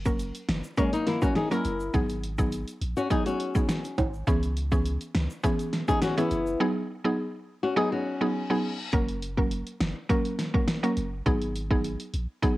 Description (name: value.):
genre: dancehall.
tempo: 103 BPM.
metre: 4/4.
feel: straight.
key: G# minor.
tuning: A4 = 441 Hz.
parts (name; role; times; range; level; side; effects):
punchy sub bass; bass; 0.0-12.3 s; F#1 to C#2; -32 LUFS; equal; none.
mallet-like synth pluck; accompaniment; 0.1-12.6 s; E3 to A#4; -28 LUFS; right 1 dB; chorus, sidechain pumping.
pop drum kit; drums; 0.1-12.6 s; hi-hat, kick drum, snare drum; -28 LUFS; equal; cassette tape.
egg shaker and timbales; percussion; 0.1-6.6 s; none; -37 LUFS; right 4 dB; none.
flamenco guitar; arpeggios; 0.8-8.8 s; G#3 to A#4; -28 LUFS; left 3 dB; none.
reverse cymbal; sound effects; 8.1-8.9 s; none; -40 LUFS; left 4 dB; none.
room: light reverb, digital ambience.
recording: home recording on cassette.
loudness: -25 LUFS.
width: side -17 dB against mid.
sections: 0.0-8.9 A section; 8.9-12.6 B section.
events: reverse cymbal 8.1-8.9.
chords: 0.0 F#; 1.9 G#m7; 4.3 C#m7; 6.6 G#m7; 8.9 F#; 11.3 G#m7.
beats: 0.20 0.78 1.36 | 1.94 2.52 3.11 3.69 | 4.27 4.86 5.44 6.02 | 6.60 7.18 7.77 8.35 | 8.93 9.52 10.10 10.68 | 11.26 11.85 12.43.